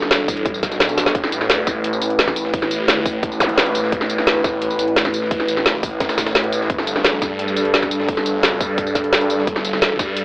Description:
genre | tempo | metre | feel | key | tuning
dark technical drum and bass | 173 BPM | 4/4 | straight | unclear | A4 = 438 Hz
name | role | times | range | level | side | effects
dark analog pad | sustained chords | 0.0-10.2 s | G3 to B4 | -22 LUFS | equal | chorus, sidechain pumping
phased detuned saw bass | bass | 0.0-10.2 s | G1 to G2 | -23 LUFS | equal | phaser, tube saturation, sidechain pumping
drum and bass drum kit | drums | 0.0-10.2 s | hi-hat, snare drum, tambourine | -18 LUFS | equal | none
breakbeat sampler-style drum kit | drums | 0.1-10.2 s | hi-hat, snare drum | -28 LUFS | equal | none
electronic kick drum | drums | 0.3-10.1 s | none | -24 LUFS | equal | none
zap | sound effects | 3.4-3.5 s | none | -22 LUFS | equal | none
room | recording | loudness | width
light reverb | AM radio sound | -16 LUFS | side -23 dB against mid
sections
0.0-10.2 A section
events
drum fill 1.0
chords
0.0 G; 1.1 A5; 6.7 G5

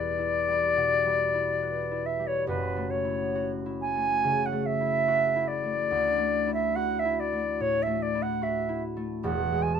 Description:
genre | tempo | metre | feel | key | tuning
classical, impressionist duo for flute and harp | 71 BPM | 4/4 | rubato | D major | A4 = 439 Hz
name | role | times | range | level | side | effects
silver concert flute | melody | 0.0-9.8 s | B4 to A5 | -26 LUFS | equal | none
concert harp | accompaniment | 0.0-9.8 s | E1 to B4 | -30 LUFS | left 1 dB | none
room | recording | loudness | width
light reverb | none | -25 LUFS | side -7 dB against mid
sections
0.0-9.8 A section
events
none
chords
0.0 Em7; 2.5 F#m7; 5.9 Dadd9; 9.2 Eadd9

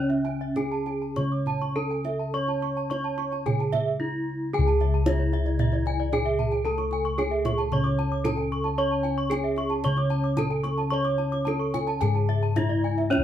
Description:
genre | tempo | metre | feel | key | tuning
Balinese gamelan | 111 BPM | 4/4 | straight | C# pelog | A4 = 439 Hz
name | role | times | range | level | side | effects
gamelan-type bronze metallophone | melody | 0.0-13.2 s | C#4 to C#5 | -29 LUFS | right 2 dB | none
gamelan-type bronze metallophone | accompaniment | 0.0-13.1 s | C#3 to C#4 | -36 LUFS | left 5 dB | none
gamelan-type bronze metallophone | arpeggios | 0.0-13.2 s | C#5 to D6+35c | -33 LUFS | left 5 dB | none
gamelan-type bossed gongs | bass | 0.0-13.2 s | C#2 to C#5 | -26 LUFS | left 1 dB | none
gamelan-type bronze metallophone | arpeggios | 0.1-13.1 s | C#5 to D6+35c | -33 LUFS | right 6 dB | none
kendang | percussion | 0.1-13.2 s | none | -32 LUFS | right 3 dB | none
room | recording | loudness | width
moderate studio ambience, RT60 0.5 s | band playing live in one room | -23 LUFS | side -10 dB against mid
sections
0.0-4.5 A section; 4.5-13.1 B section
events
none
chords
none

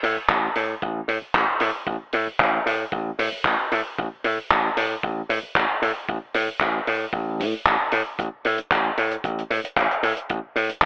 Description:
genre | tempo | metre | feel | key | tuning
nu-disco, nu disco | 114 BPM | 4/4 | straight | unclear | A4 = 441 Hz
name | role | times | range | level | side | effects
dry thumbed slap bass | bass | 0.0-10.9 s | A1 to A2 | -23 LUFS | equal | none
damped 70s drum kit | drums | 0.0-10.9 s | handclaps, hi-hat | -22 LUFS | equal | none
kick drum | drums | 0.3-10.9 s | none | -30 LUFS | equal | none
room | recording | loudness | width
light reverb | telephone sound | -21 LUFS | side -27 dB against mid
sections
0.0-10.9 A section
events
none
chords
none

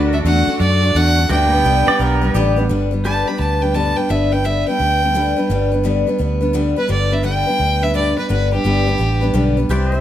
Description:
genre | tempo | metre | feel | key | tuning
honky-tonk and classic country | 171 BPM | 4/4 | swing 64% on 8ths | G major | A4 = 440 Hz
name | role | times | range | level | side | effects
picked steel-string acoustic guitar | accompaniment | 0.0-10.0 s | G2 to C5 | -19 LUFS | left 2 dB | none
pedal steel guitar | sustained chords | 0.0-10.0 s | B3 to E5 | -27 LUFS | right 1 dB | none
rich studio violin section | sustained chords | 0.0-2.7 s | G3 to D5 | -29 LUFS | right 2 dB | none
vintage muted fingered electric bass | bass | 0.0-10.0 s | G1 to F#2 | -18 LUFS | equal | none
rich fiddle | melody | 0.1-9.5 s | G4 to B5 | -20 LUFS | right 1 dB | plate reverb
pedal steel guitar | second line | 1.9-2.6 s | G4 to D5 | -21 LUFS | right 3 dB | none
room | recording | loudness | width
moderate studio reverb, RT60 0.9 s | none | -14 LUFS | side -11 dB against mid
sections
0.0-2.7 A section; 2.7-10.0 B section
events
fiddle solo 2.7-10.0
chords
0.0 D; 1.3 G

